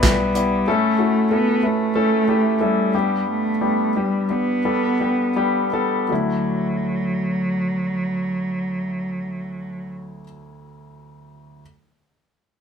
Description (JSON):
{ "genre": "piano-driven pop", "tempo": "80-94 BPM", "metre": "4/4", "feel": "straight", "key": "D major", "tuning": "A4 = 441 Hz", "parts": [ { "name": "warm cello", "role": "melody", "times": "0.0-9.9 s", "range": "F#3 to B3", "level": "-22 LUFS", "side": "right 2 dB", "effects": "none" }, { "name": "warm concert grand piano", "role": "accompaniment", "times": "0.0-11.6 s", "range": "D2 to D5", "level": "-22 LUFS", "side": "left 3 dB", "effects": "none" }, { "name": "vintage muted fingered electric bass", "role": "bass", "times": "0.0-0.6 s", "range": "B1", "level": "-31 LUFS", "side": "equal", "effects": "none" }, { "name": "modern studio drum kit", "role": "drums", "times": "0.0-0.5 s", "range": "handclaps, hi-hat, kick drum, snare drum", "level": "-18 LUFS", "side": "equal", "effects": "none" } ], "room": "moderate studio reverb, RT60 0.8 s", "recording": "band playing live in one room", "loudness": "-18 LUFS", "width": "side -6 dB against mid", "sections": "0.0-6.1 A section; 6.1-9.1 B section", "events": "slowing down 0.7-6.1", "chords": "0.0 Em/B; 0.7 A; 2.9 G; 6.1 Dadd9", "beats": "0.03 | 0.67 1.31 1.95 2.61 | 3.27 3.95 4.65 5.37 | 6.10 6.86 7.61 8.36" }